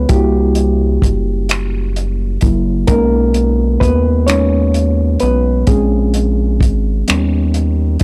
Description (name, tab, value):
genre	slow six-eight R&B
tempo	43 BPM (dotted quarters)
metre	6/8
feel	straight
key	unclear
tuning	A4 = 440 Hz
part	reed electric piano	accompaniment	0.0-8.0 s	F#3 to C#5	-18 LUFS	equal	none
part	rubbery square bass	bass	0.0-8.0 s	F#1 to D#2	-18 LUFS	equal	none
part	warm soul drum kit	drums	0.1-8.0 s	finger snaps, hi-hat, kick drum	-17 LUFS	equal	none
room	studio reverb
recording	dry, gritty hardware recording, transformer saturation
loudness	-14 LUFS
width	mono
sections	0.0-8.0 A section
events	reed electric piano solo 0.0-8.0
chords	0.1 C7#11; 2.9 B69; 5.7 A#m7; 7.1 D#aug7